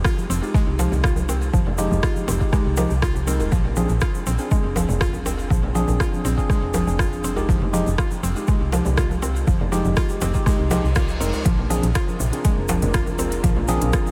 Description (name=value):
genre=afro house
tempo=121 BPM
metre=4/4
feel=straight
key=F dorian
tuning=A4 = 440 Hz
part: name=mallet-like synth pluck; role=arpeggios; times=0.0-14.1 s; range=C3 to F4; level=-29 LUFS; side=equal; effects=chorus, sidechain pumping, diffuse ambient delay
part: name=woody FM bass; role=bass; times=0.0-13.9 s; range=Eb1 to C2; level=-26 LUFS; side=equal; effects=sidechain pumping
part: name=afro-pop drum kit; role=drums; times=0.0-14.0 s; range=hi-hat, rim click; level=-35 LUFS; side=equal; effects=none
part: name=electronic kick drum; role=drums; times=0.0-14.0 s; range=none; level=-23 LUFS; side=equal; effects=none
part: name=egg shaker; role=percussion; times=0.1-14.1 s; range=none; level=-38 LUFS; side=equal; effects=none
part: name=congas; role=percussion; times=0.2-14.1 s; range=none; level=-33 LUFS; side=equal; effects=none
part: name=bright tine electric piano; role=stabs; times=0.4-14.1 s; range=Ab3 to Bb4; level=-30 LUFS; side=equal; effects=sidechain pumping, diffuse ambient delay
part: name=djembe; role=percussion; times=0.8-13.9 s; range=none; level=-35 LUFS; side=equal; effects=none
part: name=reverse cymbal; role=sound effects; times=10.6-11.5 s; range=none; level=-40 LUFS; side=equal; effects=none
part: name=dark analog pad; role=sustained chords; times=12.1-14.1 s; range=F4 to D6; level=-33 LUFS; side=equal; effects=chorus, sidechain pumping
room=light reverb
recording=none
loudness=-21 LUFS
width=mono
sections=0.0-14.1 A section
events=reverse cymbal 10.6-11.5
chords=0.0 Fm7; 3.5 Bb7; 7.5 Fm7; 11.5 Bb7